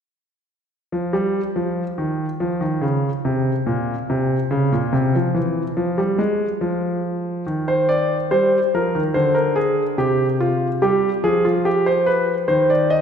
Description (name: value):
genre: classical, baroque-style two-part invention for grand piano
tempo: 71 BPM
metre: 4/4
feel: straight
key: unclear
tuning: A4 = 440 Hz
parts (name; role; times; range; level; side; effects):
- clear grand piano; solo; 0.9-13.0 s; Bb2 to Eb5; -17 LUFS; equal; none
room: wet concert hall reverb, RT60 2.4 s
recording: recorded in a church or concert hall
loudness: -17 LUFS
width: side -7 dB against mid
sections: 0.7-13.0 A section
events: none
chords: 0.7 N.C.; 7.5 Cm/Eb; 9.2 Dm7b5; 10.8 G7; 12.5 Cm/Eb